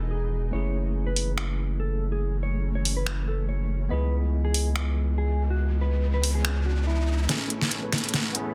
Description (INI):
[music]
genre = future bass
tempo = 142 BPM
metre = 4/4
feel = swing 53% on 16ths, half-time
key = unclear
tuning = A4 = 440 Hz
[part]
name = mellow electric guitar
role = melody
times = 0.0-8.1 s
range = B3 to C#5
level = -38 LUFS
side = equal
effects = subtle chorus, low-pass filter, dub echo
[part]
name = tine electric piano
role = accompaniment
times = 0.0-8.5 s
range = A3 to D#5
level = -40 LUFS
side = equal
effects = none
[part]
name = shimmering ambient pad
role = sustained chords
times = 0.0-8.5 s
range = C#3 to G#4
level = -43 LUFS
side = equal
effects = chorus, built-in reverb
[part]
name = saturated sub bass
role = bass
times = 0.0-8.5 s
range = E1 to C#2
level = -28 LUFS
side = equal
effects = high-pass filter
[part]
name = pop drum kit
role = drums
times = 1.2-8.4 s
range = finger snaps, hi-hat, snare drum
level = -30 LUFS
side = equal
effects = overdrive, low-pass filter on hats, low-pass filter on cymbals, soft clipping on snare, low-pass filter on snare, low-pass filter on room
[part]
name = riser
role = sound effects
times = 5.1-7.3 s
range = none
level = -43 LUFS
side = equal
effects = none
[part]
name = dense compressed supersaw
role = riff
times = 7.3-8.5 s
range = A3 to B5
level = -37 LUFS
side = equal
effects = cassette tape, low-pass filter
[sound]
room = digital ambience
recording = dense, heavily limited modern master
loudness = -26 LUFS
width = mono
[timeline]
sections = 0.0-7.3 A section; 7.3-8.5 B section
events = riser 5.1-7.3; build-up 7.3-8.5; drum fill 7.3-8.5; filter sweep on supersaw synth 7.3-8.5; filter sweep on clean electric guitar 7.3-8.5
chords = 0.0 Emaj7; 0.5 F#m7; 3.9 C#m7; 7.3 Amaj7